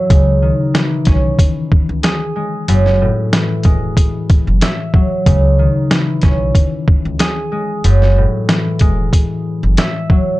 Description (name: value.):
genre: hip hop, boom-bap hip-hop.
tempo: 93 BPM.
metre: 4/4.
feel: swing 54% on 16ths.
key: C# minor.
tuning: A4 = 440 Hz.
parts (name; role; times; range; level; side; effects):
concert harp; accompaniment; 0.0-10.4 s; F#2 to E5; -16 LUFS; left 1 dB; cassette tape, high-pass filter, low-pass filter.
upright bass; bass; 0.1-9.7 s; E1 to C#2; -15 LUFS; equal; none.
trip hop sampler-style drum kit; drums; 0.1-10.3 s; hi-hat, kick drum, snare drum; -13 LUFS; equal; none.
room: little or no reverb.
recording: dark, warm production, nothing above 10.6 kHz.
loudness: -12 LUFS.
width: side -18 dB against mid.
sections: 0.0-10.4 A section.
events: none.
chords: 0.1 C#madd9; 2.7 F#m9; 5.3 C#madd9; 7.8 F#m9.